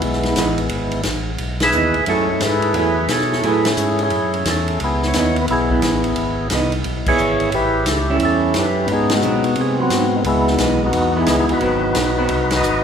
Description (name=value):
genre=soul jazz organ trio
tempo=176 BPM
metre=4/4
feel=swing 65% on 8ths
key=C# minor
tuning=A4 = 439 Hz
part: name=percussive tonewheel organ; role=melody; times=0.0-12.8 s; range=G#3 to E5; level=-18 LUFS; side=equal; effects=slow rotary speaker
part: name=tonewheel organ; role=bass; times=0.0-12.8 s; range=G#1 to B#2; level=-23 LUFS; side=equal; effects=overdrive, chorus vibrato, slow rotary speaker
part: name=vintage drum kit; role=drums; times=0.0-12.7 s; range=crash cymbal, hi-hat, kick drum, ride cymbal, snare drum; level=-24 LUFS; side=equal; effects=none
part: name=vintage hollow-body jazz guitar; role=accompaniment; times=0.4-12.3 s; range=E3 to G#4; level=-23 LUFS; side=right 3 dB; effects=none
room=moderate cathedral reverb, RT60 5.0 s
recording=recorded in a church or concert hall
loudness=-15 LUFS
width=side -7 dB against mid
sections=0.0-12.8 A section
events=band accent 1.6, 3.6, 7.0, 9.1, 12.5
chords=0.0 C#m9 (rootless); 2.1 F#m9; 4.8 C#m9; 7.5 A7; 8.9 G#7#9; 10.3 C#m9; 11.6 G#7#9